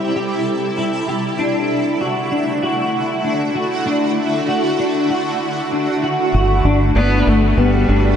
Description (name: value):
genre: dream pop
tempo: 97 BPM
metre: 4/4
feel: straight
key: G major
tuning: A4 = 440 Hz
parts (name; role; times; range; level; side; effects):
- shimmering ambient pad; sustained chords; 0.0-8.2 s; C3 to A4; -20 LUFS; right 1 dB; chorus, built-in reverb, phaser
- semi-hollow electric guitar; arpeggios; 0.0-8.2 s; B3 to G4; -19 LUFS; left 2 dB; ensemble chorus, tape echo
- deep dub fingered electric bass; bass; 6.3-8.2 s; G1; -16 LUFS; right 1 dB; none
- rich viola; melody; 7.0-8.2 s; G3 to B3; -18 LUFS; left 1 dB; tape echo
room: wet huge ambient reverb, RT60 8.5 s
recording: dreamy mix soaked in reverb, nothing above 10.5 kHz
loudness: -15 LUFS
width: side -8 dB against mid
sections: 0.0-6.3 A section; 6.3-8.2 B section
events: none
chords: 0.0 C; 1.4 Dadd9; 6.3 Gmaj9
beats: 0.16 0.78 | 1.39 2.01 2.63 3.25 | 3.87 4.49 5.11 5.72 | 6.34 6.96 7.58